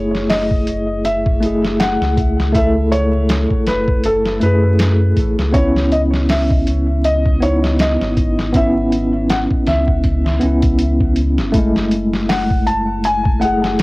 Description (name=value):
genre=trip hop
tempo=80 BPM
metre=4/4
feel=swing 57% on 16ths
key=F# dorian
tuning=A4 = 441 Hz
part: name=felt-muted upright piano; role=melody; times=0.0-13.8 s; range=A4 to A5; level=-20 LUFS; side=equal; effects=plate reverb, dub echo
part: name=tine electric piano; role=accompaniment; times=0.0-13.8 s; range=G#3 to A4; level=-18 LUFS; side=equal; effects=tremolo, low-pass filter, cassette tape, tape echo
part: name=warm sub bass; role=bass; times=0.0-13.8 s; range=F#1 to F#2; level=-19 LUFS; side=equal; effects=tube saturation
part: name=boom bap sampler-style drum kit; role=drums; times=0.1-13.8 s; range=hi-hat, kick drum, snare drum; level=-18 LUFS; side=equal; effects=studio reverb, cassette tape
room=light reverb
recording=home recording on cassette, vinyl crackle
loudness=-13 LUFS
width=side -22 dB against mid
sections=0.0-13.8 A section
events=none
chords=0.0 F#m7; 5.5 C#m9; 11.5 F#m7